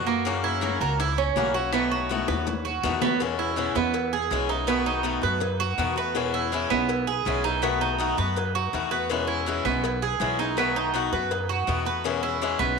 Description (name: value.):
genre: latin, Cuban son and guajira.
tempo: 163 BPM.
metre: 4/4.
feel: straight.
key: E major.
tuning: A4 = 441 Hz.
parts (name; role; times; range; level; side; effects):
picked swing-style acoustic guitar; accompaniment; 0.0-12.8 s; B2 to F#4; -28 LUFS; left 11 dB; none.
Cuban tres; arpeggios; 0.0-12.8 s; A#3 to B4; -26 LUFS; right 9 dB; tape echo.
upright bass; bass; 0.0-12.8 s; B1 to F#2; -31 LUFS; left 1 dB; none.
bongos and cowbell; percussion; 0.1-12.8 s; none; -35 LUFS; left 11 dB; none.
room: moderate echo chamber reverb, RT60 1.3 s, studio ambience.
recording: 1960s-style stereo with parts hard left and right.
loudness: -23 LUFS.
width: side -5 dB against mid.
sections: 0.0-3.2 A section; 3.2-12.8 B section.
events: drum fill 2.1-3.2.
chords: 0.3 F#7; 1.7 B7; 3.2 E6; 4.7 B7; 6.2 E6; 7.6 B7; 9.1 E6; 10.6 B7; 12.0 E6.